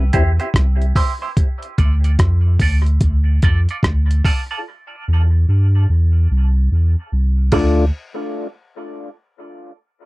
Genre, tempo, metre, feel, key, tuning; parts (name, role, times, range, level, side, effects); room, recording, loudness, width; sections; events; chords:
dub reggae; 73 BPM; 4/4; swing 64% on 16ths; D minor; A4 = 440 Hz
mellow tonewheel organ; accompaniment; 0.0-7.9 s; D2 to F4; -24 LUFS; left 3 dB; overdrive, chorus vibrato, slow rotary speaker, high-pass filter, dub echo
warm sub bass; bass; 0.0-7.9 s; C2 to G2; -14 LUFS; equal
semi-hollow electric guitar; accompaniment; 0.1-7.8 s; E4 to D5; -27 LUFS; right 3 dB; phaser, high-pass filter, dub echo
dusty soul sampler-style drum kit; drums; 0.1-7.8 s; crash cymbal, hi-hat, kick drum, rim click; -17 LUFS; equal
bongos; percussion; 7.5-7.9 s; -24 LUFS; right 6 dB
little or no reverb; dry, close 1970s-style studio recording; -14 LUFS; side -21 dB against mid
0.0-7.9 A section; 7.9-10.1 B section
break 0.0-7.9; filter sweep 0.0-4.7; drums muted 4.7-7.9
0.0 C; 1.4 Dm; 4.7 Em; 6.3 C; 7.5 Dm; 7.9 N.C.